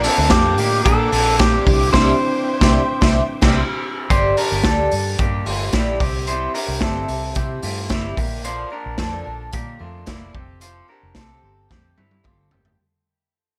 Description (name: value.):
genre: jangly indie pop.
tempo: 110 BPM.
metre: 4/4.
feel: straight.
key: unclear.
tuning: A4 = 439 Hz.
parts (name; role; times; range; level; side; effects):
mellow reed electric piano; accompaniment; 0.0-4.1 s; Bb3 to F4; -29 LUFS; equal; fast tremolo.
picked twelve-string acoustic guitar; accompaniment; 0.0-12.8 s; G2 to Bb4; -28 LUFS; equal; none.
warm studio string section; sustained chords; 0.0-4.1 s; Bb3 to D6; -34 LUFS; equal; none.
electric guitar through a small old amp; arpeggios; 0.0-12.8 s; G3 to C5; -27 LUFS; equal; tape echo.
vintage muted fingered electric bass; bass; 0.0-12.8 s; F1 to C3; -27 LUFS; equal; none.
raw garage drum kit; drums; 0.0-12.8 s; crash cymbal, hi-hat, kick drum, ride cymbal, snare drum, toms; -22 LUFS; equal; none.
electric guitar through a small old amp; melody; 0.3-3.5 s; G4 to C5; -23 LUFS; equal; tape echo.
room: moderate club reverb, RT60 0.7 s.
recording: none.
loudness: -18 LUFS.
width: mono.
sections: 0.0-4.1 A section; 4.1-12.8 B section.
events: band accent 1.9-4.1; fade-out 4.1-12.8; drum fill 11.7-12.8.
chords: 0.0 Bb; 1.7 Cadd9; 4.1 Gm; 8.2 Fadd9.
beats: 0.31 0.85 1.39 | 1.94 2.48 3.02 3.56 | 4.10 4.65 5.19 5.73 | 6.27 6.82 7.36 7.90 | 8.45 8.99 9.53 10.07 | 10.62 11.16 11.70 12.25.